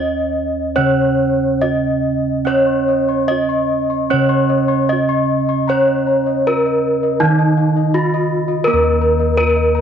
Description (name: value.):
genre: gamelan.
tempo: 71-84 BPM.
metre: 4/4.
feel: straight.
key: unclear.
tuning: A4 = 440 Hz.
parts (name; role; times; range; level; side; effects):
gamelan-type bronze metallophone; melody; 0.0-9.8 s; Eb4 to Eb5; -17 LUFS; left 2 dB; none.
gamelan-type bronze metallophone; accompaniment; 0.0-9.8 s; Eb3 to Db4-40c; -20 LUFS; right 12 dB; none.
gamelan-type bossed gongs; bass; 0.0-9.8 s; Eb2 to Db5-40c; -20 LUFS; left 1 dB; transformer saturation.
gamelan-type bossed gongs; arpeggios; 2.5-9.8 s; Eb5 to Db6-40c; -24 LUFS; left 12 dB; none.
room: light reverb, small room ambience.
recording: 1960s-style stereo with parts hard left and right.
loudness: -14 LUFS.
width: side -8 dB against mid.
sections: 0.0-8.7 A section; 8.7-9.8 B section.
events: none.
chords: none.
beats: 0.76 1.60 | 2.45 3.29 4.10 4.90 | 5.69 6.45 7.21 7.94 | 8.67 9.38.